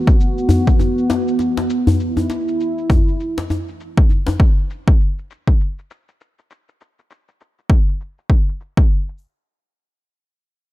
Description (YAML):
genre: organic downtempo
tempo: 100 BPM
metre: 4/4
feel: swing 59% on 16ths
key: unclear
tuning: A4 = 440 Hz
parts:
  - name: warm analog pad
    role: sustained chords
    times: 0.0-4.4 s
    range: E3 to F#4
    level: -20 LUFS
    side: equal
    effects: chorus, vintage 12-bit sampler grit, sidechain pumping
  - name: cabasa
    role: drums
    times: 0.1-9.2 s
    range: none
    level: -44 LUFS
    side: left 5 dB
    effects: overdrive, low-pass filter on hats, low-pass filter on perc, low-pass filter on snare
  - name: electronic kick drum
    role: drums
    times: 0.1-8.9 s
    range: none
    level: -13 LUFS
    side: equal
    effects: overdrive
  - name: djembe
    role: percussion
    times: 0.5-4.4 s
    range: none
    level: -19 LUFS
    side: left 2 dB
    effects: none
room: light reverb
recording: dark, warm production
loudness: -15 LUFS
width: side -16 dB against mid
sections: 0.0-9.2 A section; 9.2-10.7 B section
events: filter sweep on drum 0.0-9.2; filter sweep on analog synth pad 0.0-4.4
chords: 0.0 B7sus4; 4.4 N.C.